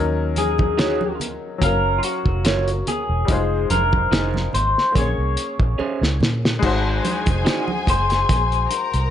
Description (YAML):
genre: lush 1970s-style soul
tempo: 72 BPM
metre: 4/4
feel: swing 54% on 16ths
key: unclear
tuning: A4 = 440 Hz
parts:
  - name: clear grand piano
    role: accompaniment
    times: 0.0-9.1 s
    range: Gb3 to F5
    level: -27 LUFS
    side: left 5 dB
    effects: none
  - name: vintage muted fingered electric bass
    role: bass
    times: 0.0-9.1 s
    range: Fb1 to Bb2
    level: -22 LUFS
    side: equal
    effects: none
  - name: electric guitar through a small old amp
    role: melody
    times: 0.4-9.1 s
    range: F4 to Db5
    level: -22 LUFS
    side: left 2 dB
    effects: lush chorus, slapback echo
  - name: cloth-damped thuddy drum kit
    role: drums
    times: 0.4-9.1 s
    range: crash cymbal, hi-hat, kick drum, snare drum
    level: -22 LUFS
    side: equal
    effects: none
  - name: congas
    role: percussion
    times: 0.4-8.9 s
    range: none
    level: -30 LUFS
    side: right 5 dB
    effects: none
  - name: electric guitar through a small old amp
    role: riff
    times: 0.8-7.7 s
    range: Db4 to Db5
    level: -26 LUFS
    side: right 6 dB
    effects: none
  - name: muted studio string section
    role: second line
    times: 6.6-9.1 s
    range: Ab4 to Bb5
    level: -27 LUFS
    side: left 3 dB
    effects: none
room: small room ambience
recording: nothing above 10.9 kHz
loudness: -18 LUFS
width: side -10 dB against mid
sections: 0.0-6.6 A section; 6.6-9.1 B section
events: drum fill 5.8-6.6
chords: 0.0 Ebm7; 1.6 Gbmaj7; 3.3 Fm7; 5.0 Bbm9; 6.6 Ab7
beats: 0.78 1.62 2.45 | 3.29 4.12 4.96 5.79 | 6.63 7.46 8.29